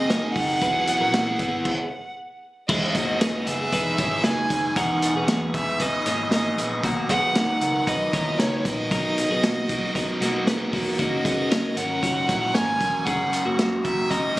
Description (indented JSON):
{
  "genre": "jangly indie pop",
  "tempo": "116 BPM",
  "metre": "4/4",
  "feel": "straight",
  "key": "unclear",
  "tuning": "A4 = 440 Hz",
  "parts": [
    { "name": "rich violin", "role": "melody", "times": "0.0-14.4 s", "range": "C#5 to G#5", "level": "-26 LUFS", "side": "right 1 dB", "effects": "none" },
    { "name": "raw garage guitar", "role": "accompaniment", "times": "0.0-14.4 s", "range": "G#2 to A#4", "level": "-28 LUFS", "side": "right 1 dB", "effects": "overdrive, phaser" },
    { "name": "twelve-string electric guitar", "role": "arpeggios", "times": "0.0-14.4 s", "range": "G#3 to C#5", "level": "-28 LUFS", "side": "left 1 dB", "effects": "none" },
    { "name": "vintage muted picked electric bass", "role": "bass", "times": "0.0-14.4 s", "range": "E1 to B2", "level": "-34 LUFS", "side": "equal", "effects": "none" },
    { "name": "vintage drum kit", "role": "drums", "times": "0.1-14.4 s", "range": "crash cymbal, hi-hat, kick drum, snare drum", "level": "-26 LUFS", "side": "equal", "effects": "none" }
  ],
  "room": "light reverb, small room ambience",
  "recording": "recorded on a phone in the room, club reverb, compression",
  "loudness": "-21 LUFS",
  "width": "side -17 dB against mid",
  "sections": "0.0-2.7 A section; 2.7-14.4 B section",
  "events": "stop 1.7-2.7",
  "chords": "0.0 G#; 0.6 Eadd9; 2.7 Emaj7"
}